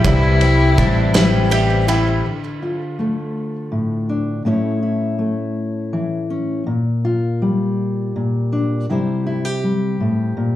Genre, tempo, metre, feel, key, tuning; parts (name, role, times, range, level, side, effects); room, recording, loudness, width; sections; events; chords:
indie folk with a building arrangement; 54 BPM (dotted quarters); 6/8; straight; D minor; A4 = 440 Hz
clear cello; melody; 0.0-1.5 s; E4; -21 LUFS; left 4 dB; slapback echo, digital delay
fingerpicked steel-string acoustic guitar; accompaniment; 0.0-10.6 s; A2 to C#5; -19 LUFS; left 1 dB
picked twelve-string acoustic guitar; accompaniment; 0.0-2.3 s; C3 to E4; -23 LUFS; left 7 dB; slapback echo
warm upright piano; accompaniment; 0.0-2.3 s; C2 to G5; -28 LUFS; equal
bowl-back mandolin; arpeggios; 0.0-2.2 s; D4 to G4; -24 LUFS; right 4 dB; digital delay
fingered electric bass; bass; 0.0-2.2 s; A1 to C2; -16 LUFS; equal
loose indie drum kit; drums; 0.0-2.1 s; kick drum, ride cymbal, snare drum; -21 LUFS; right 1 dB
light reverb; live gig heard through the venue's PA, club reverb; -16 LUFS; side -13 dB against mid
0.0-2.3 A section; 2.3-10.6 B section
upright piano fill 1.1-2.3
0.0 C; 2.3 Dm; 4.5 A; 6.7 Gm7/Bb; 8.9 C